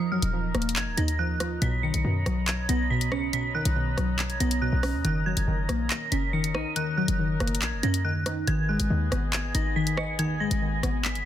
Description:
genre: hip hop, drill.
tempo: 140 BPM.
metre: 4/4.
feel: half-time.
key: unclear.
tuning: A4 = 441 Hz.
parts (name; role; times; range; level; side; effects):
dark detuned synth bell; melody; 0.0-11.2 s; F6 to Eb7; -32 LUFS; right 2 dB; chorus, tremolo, low-pass filter.
warbly dusty pluck; accompaniment; 0.0-11.3 s; B2 to Eb5; -29 LUFS; equal; chorus, low-pass filter.
clear woodwind section; sustained chords; 0.0-11.3 s; Cb4 to Bb5; -38 LUFS; left 3 dB; none.
short 808-style bass; bass; 0.2-11.3 s; Eb1 to F#2; -28 LUFS; equal; none.
drill drum kit; drums; 0.2-11.3 s; handclaps, hi-hat, rim click; -30 LUFS; left 1 dB; none.
room: little or no reverb.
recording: dense, heavily limited modern master.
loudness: -24 LUFS.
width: side -11 dB against mid.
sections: 0.0-11.3 A section.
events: none.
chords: 0.0 Ebmadd9; 1.6 Badd9; 5.0 Gb6; 8.5 Abm.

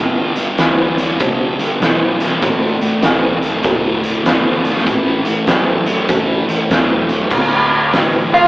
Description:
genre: blues rock power trio and southern rock.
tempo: 98 BPM.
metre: 4/4.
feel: swing 64% on 8ths.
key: unclear.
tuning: A4 = 440 Hz.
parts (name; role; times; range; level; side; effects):
tonewheel organ; sustained chords; 0.0-8.5 s; G3 to E5; -26 LUFS; right 1 dB; none.
thick fuzz guitar; riff; 0.0-8.5 s; D2 to F#3; -17 LUFS; equal; distortion.
vintage muted picked electric bass; bass; 0.0-8.5 s; D1 to D2; -32 LUFS; equal; none.
oversized low-tuned drum kit; drums; 0.4-8.1 s; crash cymbal, hi-hat, kick drum, snare drum; -15 LUFS; equal; none.
octave-fuzz lead guitar; melody; 8.3-8.5 s; F4; -7 LUFS; right 1 dB; distortion.
room: moderate studio reverb, RT60 0.6 s.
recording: band playing live in one room, AM radio sound.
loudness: -12 LUFS.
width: side -20 dB against mid.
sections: 0.0-7.3 A section; 7.3-8.5 B section.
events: lead electric guitar solo 7.3-8.5.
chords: 0.0 G7; 2.4 D7; 4.9 A7; 7.3 D7.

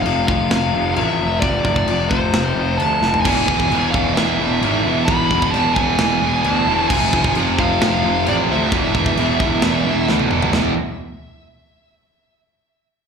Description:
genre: heavy metal.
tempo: 132 BPM.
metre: 4/4.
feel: straight.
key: E phrygian dominant.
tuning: A4 = 439 Hz.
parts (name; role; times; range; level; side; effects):
high-gain lead guitar; melody; 0.0-10.1 s; C5 to B5; -21 LUFS; equal; distortion, slapback echo, digital delay.
tight distorted guitar; riff; 0.0-10.7 s; E2 to F3; -22 LUFS; left 10 dB; distortion, slapback echo.
fuzz picked electric bass; bass; 0.0-10.7 s; E1 to D2; -22 LUFS; right 1 dB; overdrive.
tight metal drum kit; drums; 0.1-10.6 s; china cymbal, crash cymbal, kick drum, snare drum, splash cymbal, toms; -23 LUFS; equal; none.
high-gain distorted guitar; riff; 3.2-10.7 s; E2 to F3; -20 LUFS; right 13 dB; distortion, slapback echo.
room: small room ambience.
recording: live gig heard through the venue's PA, club reverb.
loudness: -15 LUFS.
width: side -6 dB against mid.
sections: 0.0-10.5 A section; 10.5-12.4 B section.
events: drum fill 3.0, 10.1-10.5.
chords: 0.0 F5; 3.3 E; 6.9 F5; 8.7 E5.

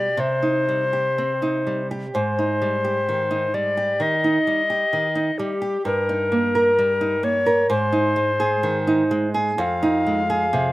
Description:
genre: romantic duo for recorder and classical guitar.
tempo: 64 BPM.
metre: 4/4.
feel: rubato.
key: unclear.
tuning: A4 = 444 Hz.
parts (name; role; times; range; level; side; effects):
alto recorder; melody; 0.0-10.7 s; G4 to F5; -21 LUFS; left 2 dB; none.
nylon-string guitar; accompaniment; 0.0-10.7 s; F2 to Bb4; -22 LUFS; right 2 dB; slapback echo.
room: little or no reverb.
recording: recorded outdoors, with no room sound.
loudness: -19 LUFS.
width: side -17 dB against mid.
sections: 0.0-10.7 A section.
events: none.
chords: 0.2 Cm; 2.1 Abmaj7; 5.9 Eb/G; 7.7 Ab; 9.6 Fm7.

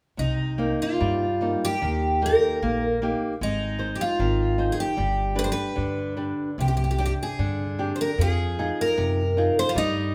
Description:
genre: fado-style ballad.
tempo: 76 BPM.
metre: 2/4.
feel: rubato.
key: C minor.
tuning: A4 = 440 Hz.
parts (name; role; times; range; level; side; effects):
picked twelve-string acoustic guitar; melody; 0.2-10.1 s; Eb4 to C5; -27 LUFS; equal; none.
flamenco guitar; accompaniment; 0.2-10.1 s; C3 to G5; -31 LUFS; equal; none.
upright bass; bass; 0.2-10.1 s; G1 to G2; -29 LUFS; equal; none.
room: moderate recital hall reverb, RT60 1.5 s.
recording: none.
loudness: -25 LUFS.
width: mono.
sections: 0.2-10.1 A section.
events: none.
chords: 0.2 Cm7; 1.8 Eb; 3.4 Ab; 5.0 G; 6.6 Csus2; 8.2 Fm7.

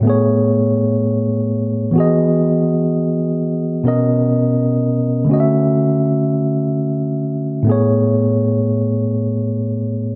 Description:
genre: R&B.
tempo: 63 BPM.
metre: 4/4.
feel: swing 54% on 16ths.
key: A major.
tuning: A4 = 440 Hz.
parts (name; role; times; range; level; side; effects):
mellow tine electric piano; solo; 0.0-10.2 s; A2 to E5; -17 LUFS; equal; none.
room: moderate plate reverb, RT60 3.2 s.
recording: none.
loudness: -17 LUFS.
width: mono.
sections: 0.0-7.7 A section; 7.7-10.2 B section.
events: none.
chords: 0.0 Amaj9; 2.0 Emaj9; 3.9 Bmaj9; 5.3 Dmaj9; 7.7 Amaj9.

